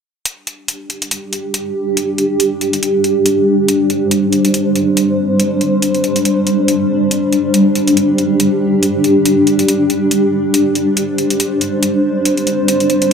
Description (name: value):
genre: deep dubstep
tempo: 140 BPM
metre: 4/4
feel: swing 56% on 16ths, half-time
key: unclear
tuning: A4 = 440 Hz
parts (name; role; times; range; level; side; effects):
- granular cloud pad; sustained chords; 1.2-13.1 s; G3 to C5; -12 LUFS; equal; built-in reverb
- electronic hi-hat; drums; 0.3-13.1 s; none; -19 LUFS; left 1 dB; overdrive
room: wet lush hall reverb, RT60 2.2 s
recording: none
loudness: -12 LUFS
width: side -6 dB against mid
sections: 0.3-13.1 A section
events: filter sweep on ambient pad 0.3-13.1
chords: 0.3 G5